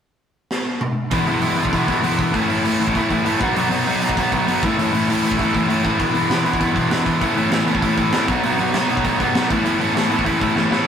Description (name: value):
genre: punk rock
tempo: 197 BPM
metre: 4/4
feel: straight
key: unclear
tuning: A4 = 441 Hz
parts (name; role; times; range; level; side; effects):
- raw garage drum kit; drums; 0.5-10.8 s; hi-hat, kick drum, snare drum, toms; -23 LUFS; right 1 dB; none
- overdriven electric guitar; riff; 1.1-10.9 s; A2 to E4; -22 LUFS; right 2 dB; none
- overdriven semi-hollow guitar; riff; 1.1-10.9 s; E2 to B3; -19 LUFS; left 2 dB; none
room: wet booth ambience, RT60 0.2 s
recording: rough rehearsal-room recording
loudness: -16 LUFS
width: side -8 dB against mid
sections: 0.0-1.1 A section; 1.1-10.9 B section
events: drum fill 0.5-1.1, 10.6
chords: 0.0 N.C.; 1.1 E; 2.3 A; 3.4 B; 4.6 A; 6.0 E; 7.2 A; 8.3 B; 9.5 A